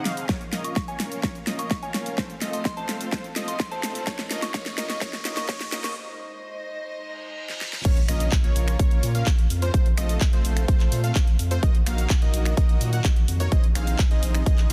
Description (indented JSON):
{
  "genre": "EDM, festival progressive house",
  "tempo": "127 BPM",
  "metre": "4/4",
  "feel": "straight",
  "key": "Bb minor",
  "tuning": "A4 = 440 Hz",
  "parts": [
    { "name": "soft synth bell", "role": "melody", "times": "0.0-5.9 s", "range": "Ab5 to Eb6", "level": "-38 LUFS", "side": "equal", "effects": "chorus, phaser, digital delay" },
    { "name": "dark chamber string section", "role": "sustained chords", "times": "0.0-14.7 s", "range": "Bb2 to F5", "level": "-41 LUFS", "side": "equal", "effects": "sidechain pumping" },
    { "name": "plucky unison lead", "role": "arpeggios", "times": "0.0-14.7 s", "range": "C5 to Gb5", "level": "-38 LUFS", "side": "equal", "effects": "sidechain pumping, digital delay" },
    { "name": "dense compressed supersaw", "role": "riff", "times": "0.0-14.7 s", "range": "A3 to Gb5", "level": "-37 LUFS", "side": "equal", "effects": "sidechain pumping, digital delay" },
    { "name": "pop drum kit", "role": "drums", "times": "0.1-14.7 s", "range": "crash cymbal, finger snaps, handclaps, hi-hat, shaker, snare drum", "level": "-33 LUFS", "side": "equal", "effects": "none" },
    { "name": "electronic kick drum", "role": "drums", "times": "0.3-14.6 s", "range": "none", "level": "-24 LUFS", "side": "equal", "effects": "overdrive" },
    { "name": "riser, reverse cymbal and impact", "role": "sound effects", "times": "3.2-9.7 s", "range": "none", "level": "-41 LUFS", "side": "equal", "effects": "none" },
    { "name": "saturated sub bass", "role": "bass", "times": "7.8-14.7 s", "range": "Bb1 to Bb2", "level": "-27 LUFS", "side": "equal", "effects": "sidechain pumping" }
  ],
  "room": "light reverb, digital ambience",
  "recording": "dense, heavily limited modern master, high-pass filter",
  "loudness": "-24 LUFS",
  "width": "mono",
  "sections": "0.0-7.8 A section; 7.8-14.7 B section",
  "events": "build-up 0.0-7.8; drum fill 0.0-6.0, 7.5-7.8; filter sweep on digital synth lead 0.0-7.8; filter sweep 0.0-7.8; break 6.0-7.8; reverse cymbal 7.1-7.8; drop 7.8-14.7; impact 7.8-9.7",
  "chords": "0.3 Bbm; 2.2 F; 4.1 Ebm/Bb; 6.0 Ab/Bb; 7.8 Bbm; 9.7 F/Bb; 11.6 Ebm/Bb; 13.5 Ab/Bb",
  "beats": "| 0.29 0.76 1.24 1.71 | 2.18 2.65 3.12 3.60 | 4.07 4.54 5.01 5.49 | 5.96 6.43 6.90 7.38 | 7.85 8.32 8.79 9.27 | 9.74 10.21 10.68 11.16 | 11.63 12.10 12.57 13.05 | 13.52 13.99 14.46"
}